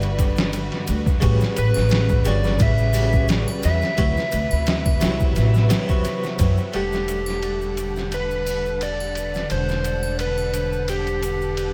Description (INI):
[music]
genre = trip hop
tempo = 87 BPM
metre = 4/4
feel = swing 54% on 16ths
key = E minor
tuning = A4 = 440 Hz
[part]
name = harpsichord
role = accompaniment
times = 0.0-11.7 s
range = C3 to F#5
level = -31 LUFS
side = equal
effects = tremolo, vintage 12-bit sampler grit, tape echo
[part]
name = rich studio string section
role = sustained chords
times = 0.0-11.7 s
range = C3 to F#5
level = -33 LUFS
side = equal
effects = none
[part]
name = upright bass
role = bass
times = 0.0-11.7 s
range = E1 to F#2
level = -25 LUFS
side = equal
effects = none
[part]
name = trip hop sampler-style drum kit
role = drums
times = 0.0-11.7 s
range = hi-hat, kick drum, ride cymbal, snare drum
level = -26 LUFS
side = equal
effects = overdrive, high-pass filter on cymbals, vintage 12-bit sampler grit, high-pass filter on kick, high-pass filter on snare, high-pass filter on hats, high-pass filter on room, tape echo
[part]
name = egg shaker and triangle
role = percussion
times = 0.0-11.7 s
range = none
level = -41 LUFS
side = equal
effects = none
[part]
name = overdriven slide guitar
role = melody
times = 1.6-11.7 s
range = G4 to E5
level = -28 LUFS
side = equal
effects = vintage 12-bit sampler grit, tape echo
[sound]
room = light reverb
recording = echo-heavy mix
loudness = -21 LUFS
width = mono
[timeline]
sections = 0.0-6.7 A section; 6.7-11.7 B section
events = none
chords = 0.0 Gmaj7; 1.2 A13; 4.0 D13; 6.7 Em11